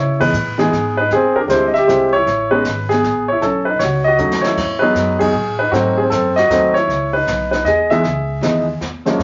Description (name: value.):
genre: jazz piano trio.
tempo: 156 BPM.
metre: 3/4.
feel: swing 65% on 8ths.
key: C# minor.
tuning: A4 = 442 Hz.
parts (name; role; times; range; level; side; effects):
warm grand piano; melody; 0.0-9.2 s; F#2 to E5; -16 LUFS; equal; none.
upright bass; bass; 0.0-9.2 s; G#1 to C#3; -26 LUFS; equal; none.
jazz brush drum kit; drums; 0.2-9.2 s; brushed snare drum, crash cymbal, hi-hat, kick drum, ride cymbal, snare drum; -30 LUFS; equal; none.
room: wet club reverb, RT60 0.6 s.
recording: vinyl crackle, nothing above 7.5 kHz.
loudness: -16 LUFS.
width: mono.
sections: 0.0-9.2 A section.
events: band accent 0.2, 5.2; drum fill 4.2-4.6.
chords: 0.0 C#m9; 1.1 E7alt; 2.3 Amaj9; 3.4 B9; 4.6 Emaj9; 5.7 G#7b9; 6.9 C#m9.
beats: 0.34 0.73 | 1.11 1.50 1.88 | 2.27 2.65 3.04 | 3.42 3.81 4.19 | 4.58 4.96 5.35 | 5.73 6.12 6.50 | 6.89 7.27 7.66 | 8.04 8.43 8.81 | 9.20.